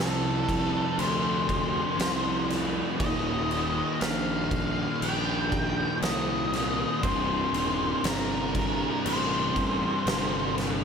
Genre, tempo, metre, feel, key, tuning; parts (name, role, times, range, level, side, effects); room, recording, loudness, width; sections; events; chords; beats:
stoner and doom metal; 60 BPM; 4/4; straight; C dorian; A4 = 440 Hz
octave-fuzz lead guitar; melody; 0.0-10.5 s; A4 to G5; -31 LUFS; left 1 dB; distortion, slapback echo
thick fuzz guitar; riff; 0.0-10.8 s; C2 to F3; -32 LUFS; left 8 dB; distortion
thick fuzz guitar; riff; 0.0-10.8 s; C2 to F3; -33 LUFS; right 12 dB; distortion
fuzz fingered electric bass; bass; 0.0-10.8 s; C1 to D2; -32 LUFS; equal; overdrive, tube saturation
oversized low-tuned drum kit; drums; 0.0-10.8 s; crash cymbal, kick drum, snare drum; -30 LUFS; equal
studio reverb; -24 LUFS; side -6 dB against mid
0.0-10.8 A section
0.0 F; 3.0 Eb; 7.0 C5
0.98 1.99 | 3.00 4.00 5.01 6.02 | 7.03 8.04 9.05 10.06